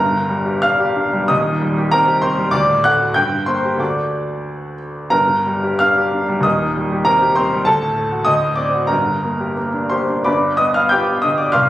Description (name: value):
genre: classical, romantic character piece for solo piano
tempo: 84-99 BPM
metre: 2/4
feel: rubato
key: G minor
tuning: A4 = 440 Hz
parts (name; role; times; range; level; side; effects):
- clear baby grand piano; solo; 0.0-11.7 s; Eb1 to G6; -14 LUFS; equal; none
room: light reverb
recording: recorded on a phone in the room, studio reverb, compression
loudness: -14 LUFS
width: side -14 dB against mid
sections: 0.0-10.3 A section; 10.3-11.7 B section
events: none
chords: 0.0 Gm; 1.3 Cm/Eb; 2.5 D; 3.2 Gm; 3.8 D; 5.1 Gm; 6.4 Cm/Eb; 7.7 D; 8.3 D7; 8.9 Gm; 10.3 G7